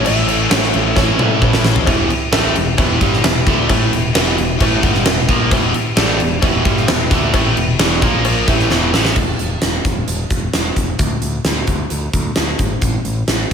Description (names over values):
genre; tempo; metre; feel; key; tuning
classic rock; 132 BPM; 4/4; straight; E dorian; A4 = 440 Hz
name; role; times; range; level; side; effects
lightly driven lead guitar; melody; 0.0-1.4 s; E5; -26 LUFS; equal; wah, slapback echo, analog delay
dark baby grand piano; accompaniment; 0.0-9.0 s; A#3 to C#6; -25 LUFS; right 5 dB; slapback echo
biting overdriven guitar; riff; 0.0-9.2 s; E2 to D4; -20 LUFS; right 9 dB; slapback echo
distorted electric guitar; riff; 0.0-9.2 s; E2 to E4; -20 LUFS; left 10 dB; distortion
growling picked electric bass; bass; 0.0-13.5 s; E1 to A2; -21 LUFS; equal; overdrive
cowbell; percussion; 0.0-8.8 s; none; -30 LUFS; left 7 dB; none
huge arena drum kit; drums; 0.1-13.5 s; crash cymbal, hi-hat, kick drum, snare drum, toms; -16 LUFS; equal; none
room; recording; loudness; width
moderate scoring stage reverb, RT60 1.5 s; big arena sound; -13 LUFS; side -7 dB against mid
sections
0.0-1.9 A section; 1.9-9.2 B section; 9.2-13.5 C section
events
drum fill 1.0-1.9, 8.7-9.2; grand piano fill 1.0-1.9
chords
0.0 A; 1.9 Em; 8.0 A#5; 8.5 Em; 9.2 N.C.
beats
| 0.06 0.51 0.97 1.42 | 1.88 2.33 2.79 3.24 | 3.70 4.15 4.61 5.06 | 5.52 5.97 6.43 6.89 | 7.34 7.80 8.25 8.71 | 9.17 9.62 10.08 10.54 | 11.00 11.46 11.92 12.37 | 12.83 13.29